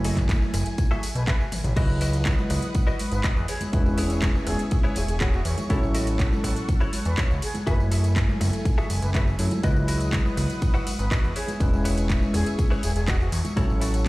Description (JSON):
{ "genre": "nu-disco, nu disco", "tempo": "122 BPM", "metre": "4/4", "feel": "straight", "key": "E major", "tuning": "A4 = 441 Hz", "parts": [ { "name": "tine electric piano", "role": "accompaniment", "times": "0.0-14.1 s", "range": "F#3 to G#5", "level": "-30 LUFS", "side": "equal", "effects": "sidechain pumping, digital delay" }, { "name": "lush unison pad", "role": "sustained chords", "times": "0.0-14.1 s", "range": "A3 to D#6", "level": "-38 LUFS", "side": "equal", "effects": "chorus, phaser, vintage 12-bit sampler grit, sidechain pumping" }, { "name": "direct-recorded clean electric guitar", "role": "riff", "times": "0.0-14.1 s", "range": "E4 to G#5", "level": "-35 LUFS", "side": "left 2 dB", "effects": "analog chorus, digital delay" }, { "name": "fat analog bass", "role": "bass", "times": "0.0-14.1 s", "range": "E1 to F#2", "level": "-24 LUFS", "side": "equal", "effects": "none" }, { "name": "house drum kit", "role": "drums", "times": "0.0-14.1 s", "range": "crash cymbal, handclaps, hi-hat, ride cymbal, tambourine, toms", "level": "-33 LUFS", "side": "equal", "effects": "none" }, { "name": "electronic kick drum", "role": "drums", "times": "0.2-14.1 s", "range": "none", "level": "-23 LUFS", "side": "equal", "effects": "none" }, { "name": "bright reedy concert flute", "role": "melody", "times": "1.2-13.3 s", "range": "F#4 to B4", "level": "-37 LUFS", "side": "equal", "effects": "digital delay" }, { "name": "tube shaker and congas", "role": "percussion", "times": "1.8-14.1 s", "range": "none", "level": "-34 LUFS", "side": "right 1 dB", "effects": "none" } ], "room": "little or no reverb", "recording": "played on a big sound system in a bare room, large studio reverb", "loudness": "-21 LUFS", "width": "side -20 dB against mid", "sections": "0.0-14.1 A section", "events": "drum fill 1.5; clean electric guitar fill 4.7-5.7", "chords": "0.0 F#m9; 1.8 C#m11; 3.5 E6; 5.7 A6; 7.7 F#m9; 9.6 C#m11; 11.4 E6; 13.6 A6", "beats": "0.29 0.79 1.28 | 1.77 2.26 2.75 3.24 | 3.74 4.23 4.72 5.21 | 5.70 6.20 6.69 7.18 | 7.67 8.16 8.65 9.15 | 9.64 10.13 10.62 11.11 | 11.61 12.10 12.59 13.08 | 13.57 14.06" }